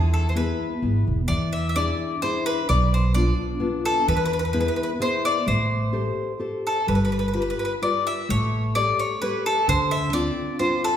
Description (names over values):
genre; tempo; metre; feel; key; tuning
italian folk, Italian serenade; 129 BPM; 3/4; straight; A minor; A4 = 437 Hz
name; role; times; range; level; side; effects
nylon-string guitar; accompaniment; 0.0-11.0 s; B2 to C#5; -26 LUFS; left 2 dB; none
upright bass; bass; 0.0-10.3 s; E1 to E2; -24 LUFS; right 1 dB; none
bowl-back mandolin; melody; 0.1-11.0 s; A4 to E5; -24 LUFS; left 1 dB; none
room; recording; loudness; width
wet recital hall reverb, RT60 1.6 s; heard from further back in the room; -21 LUFS; side -9 dB against mid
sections
0.0-11.0 A section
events
none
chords
0.0 E; 1.3 E7; 2.7 Bdim; 4.1 E; 5.5 Am7; 6.9 G7; 8.3 A7; 9.7 Dm7